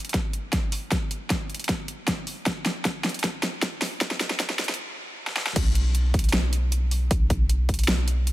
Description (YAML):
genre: future bass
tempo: 155 BPM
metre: 4/4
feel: half-time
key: unclear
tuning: A4 = 440 Hz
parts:
  - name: warm 808-style bass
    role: bass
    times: 0.0-8.3 s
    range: B1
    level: -23 LUFS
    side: equal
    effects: sidechain pumping, high-pass filter
  - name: big-room dance drum kit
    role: drums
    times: 0.0-8.3 s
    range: crash cymbal, hi-hat, snare drum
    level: -27 LUFS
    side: equal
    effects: overdrive
  - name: electronic kick drum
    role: drums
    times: 0.1-7.8 s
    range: none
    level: -26 LUFS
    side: equal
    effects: overdrive
room: digital ambience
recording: high-pass filter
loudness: -23 LUFS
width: side -16 dB against mid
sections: 0.0-5.6 A section; 5.6-8.3 B section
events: build-up 0.0-5.6; drum fill 0.0-4.8, 5.3; filter sweep 0.0-5.6; stop 4.8-5.6; drop 5.6-8.3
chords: none